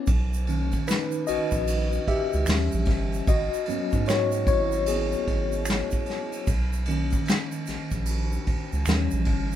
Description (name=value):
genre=R&B, neo-soul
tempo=75 BPM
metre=4/4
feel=swing 63% on 16ths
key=B major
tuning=A4 = 440 Hz
part: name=mellow tine electric piano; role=accompaniment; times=0.0-9.6 s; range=D#3 to E5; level=-27 LUFS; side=left 2 dB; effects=medium stereo tremolo
part: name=round analog bass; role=bass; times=0.1-9.6 s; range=G1 to G#2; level=-27 LUFS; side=right 1 dB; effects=none
part: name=vintage brush drum kit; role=drums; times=0.1-9.6 s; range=kick drum, ride cymbal, snare drum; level=-27 LUFS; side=equal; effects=none
part: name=egg shaker and finger snaps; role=percussion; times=0.1-9.6 s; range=none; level=-38 LUFS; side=right 4 dB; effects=none
room=moderate studio reverb, RT60 0.6 s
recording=band playing live in one room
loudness=-23 LUFS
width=side -11 dB against mid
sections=0.1-9.6 A section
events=tine electric piano solo 0.1-9.6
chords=0.1 Bmaj9; 2.5 D#7b9; 3.3 G#m11; 6.5 Bmaj9; 8.9 D#7b9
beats=| 0.07 0.87 1.67 2.47 | 3.27 4.07 4.87 5.67 | 6.47 7.27 8.07 8.87